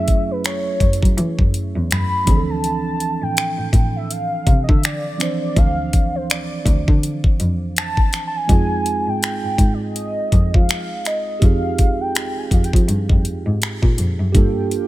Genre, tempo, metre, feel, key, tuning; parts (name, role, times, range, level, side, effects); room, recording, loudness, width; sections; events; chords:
contemporary R&B; 82 BPM; 4/4; swing 58% on 16ths; A4 = 442 Hz
warm velvety synth lead; melody; 0.0-12.7 s; B4 to B5; -24 LUFS; equal; chorus, tape echo
mellow tine electric piano; accompaniment; 0.0-14.9 s; E3 to C5; -25 LUFS; right 5 dB
dark cello; bass; 0.0-14.7 s; D2 to F#3; -21 LUFS; equal
smooth R&B drum kit; drums; 0.1-14.9 s; finger snaps, hi-hat, kick drum; -17 LUFS; equal
chorused pulse-width pad; sustained chords; 14.3-14.9 s; F4 to G5; -29 LUFS; right 4 dB; sidechain pumping
little or no reverb; faint mains hum; -16 LUFS; side -16 dB against mid
0.0-14.3 A section
0.0 F#m9; 2.3 Dm9; 8.5 Fm9; 14.3 Gm9